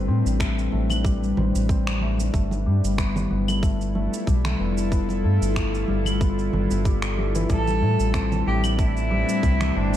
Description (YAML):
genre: organic downtempo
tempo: 93 BPM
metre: 4/4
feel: swing 55% on 16ths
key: A minor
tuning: A4 = 440 Hz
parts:
  - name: bowed-like drone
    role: sustained chords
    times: 0.0-10.0 s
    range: A2 to B4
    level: -30 LUFS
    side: equal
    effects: built-in reverb, sidechain pumping, shimmer reverb
  - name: concert harp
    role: arpeggios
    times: 0.0-10.0 s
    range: E3 to G4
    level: -27 LUFS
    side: left 4 dB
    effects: ping-pong delay
  - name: round analog bass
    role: bass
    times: 0.0-10.0 s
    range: F1 to A2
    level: -24 LUFS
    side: equal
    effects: none
  - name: electronic shaker, finger snaps and claves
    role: drums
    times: 0.3-10.0 s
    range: none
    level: -32 LUFS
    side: equal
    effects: none
  - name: electronic kick drum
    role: drums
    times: 0.4-9.6 s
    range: none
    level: -23 LUFS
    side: equal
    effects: none
  - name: congas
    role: percussion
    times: 0.7-9.7 s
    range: none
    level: -34 LUFS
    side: right 3 dB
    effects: none
  - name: rich cello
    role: melody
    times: 7.5-10.0 s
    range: D4 to A4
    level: -26 LUFS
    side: right 2 dB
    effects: tape echo, shimmer reverb
room: light reverb, digital ambience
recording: dark, warm production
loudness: -20 LUFS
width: side -12 dB against mid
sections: 0.0-10.0 A section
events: none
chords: 0.0 Am11; 2.3 G13; 7.5 Am11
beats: 0.40 1.05 1.69 | 2.34 2.98 3.63 4.27 | 4.92 5.56 6.21 6.85 | 7.50 8.14 8.79 9.44